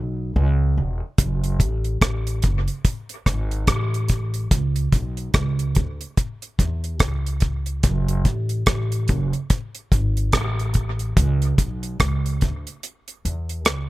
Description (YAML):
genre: dub reggae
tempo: 72 BPM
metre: 4/4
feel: swing 59% on 16ths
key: F# minor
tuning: A4 = 439 Hz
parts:
  - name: upright bass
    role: bass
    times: 0.0-13.9 s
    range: E1 to E2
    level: -22 LUFS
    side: equal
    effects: none
  - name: deep reggae drum kit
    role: drums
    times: 1.2-13.9 s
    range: hi-hat, kick drum, rim click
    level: -21 LUFS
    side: equal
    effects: none
room: little or no reverb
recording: none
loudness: -20 LUFS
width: side -18 dB against mid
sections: 0.0-1.2 A section; 1.2-13.9 B section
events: break 0.0-1.2; kick muted 12.8-13.9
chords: none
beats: 0.35 | 1.19 2.02 2.85 3.68 | 4.51 5.34 6.18 7.01 | 7.84 8.67 9.50 10.33 | 11.16 12.00 12.83 13.66